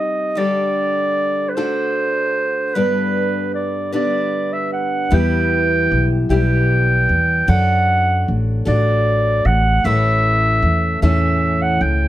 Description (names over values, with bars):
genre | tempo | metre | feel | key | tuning
acoustic folk duo or small band | 51 BPM (dotted quarters) | 6/8 | straight | unclear | A4 = 439 Hz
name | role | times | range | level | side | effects
clear clarinet | melody | 0.0-12.1 s | B4 to G5 | -18 LUFS | right 1 dB | none
picked steel-string acoustic guitar | accompaniment | 0.0-12.1 s | G2 to B4 | -21 LUFS | left 1 dB | none
upright bass | bass | 5.1-12.1 s | A1 to F#2 | -17 LUFS | equal | none
room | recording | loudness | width
light reverb | none | -15 LUFS | side -14 dB against mid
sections
0.0-5.1 A section; 5.1-12.1 B section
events
none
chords
0.4 Dsus4; 1.6 D; 2.7 G; 5.1 Em; 7.5 D; 9.8 A